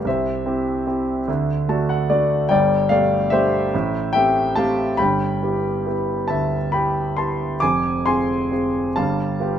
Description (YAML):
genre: classical, lyrical solo piano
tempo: 44-49 BPM (dotted quarters)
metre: 6/8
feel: rubato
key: unclear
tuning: A4 = 440 Hz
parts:
  - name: warm concert grand piano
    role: solo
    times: 0.0-9.6 s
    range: F1 to D6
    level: -18 LUFS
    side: equal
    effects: none
room: moderate small room reverb, RT60 0.5 s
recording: none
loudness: -18 LUFS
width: side -9 dB against mid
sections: 0.0-9.6 A section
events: grand piano fill 1.3-2.5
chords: 0.1 C; 1.3 D; 2.5 Gadd9; 3.7 Am7; 5.0 G6; 7.6 Fm; 9.0 G7